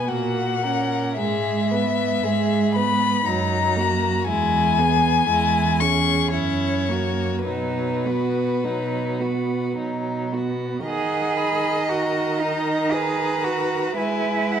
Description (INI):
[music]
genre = classical, slow romantic movement for string quartet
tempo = 51-60 BPM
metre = 3/4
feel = rubato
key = B major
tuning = A4 = 442 Hz
[part]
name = warm violin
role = melody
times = 0.0-14.6 s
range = B4 to C#6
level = -24 LUFS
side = left 7 dB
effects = none
[part]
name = rich violin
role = second line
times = 0.0-14.6 s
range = D#4 to D#5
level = -28 LUFS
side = left 2 dB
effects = none
[part]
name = rich viola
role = accompaniment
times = 0.0-14.6 s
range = D#3 to C#4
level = -26 LUFS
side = right 4 dB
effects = none
[part]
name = rich cello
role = bass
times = 0.1-14.6 s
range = E2 to G#4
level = -24 LUFS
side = right 5 dB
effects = none
[sound]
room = wet recital hall reverb, RT60 1.4 s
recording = dark, warm production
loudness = -20 LUFS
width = side -8 dB against mid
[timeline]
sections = 0.0-10.9 A section; 10.9-14.6 B section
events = none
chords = 0.1 F#/A#; 1.2 E/G#; 3.3 D#m/F#; 4.3 E; 5.3 C#m/E; 6.3 F#7; 7.5 B; 10.9 B/D#; 14.0 E/G#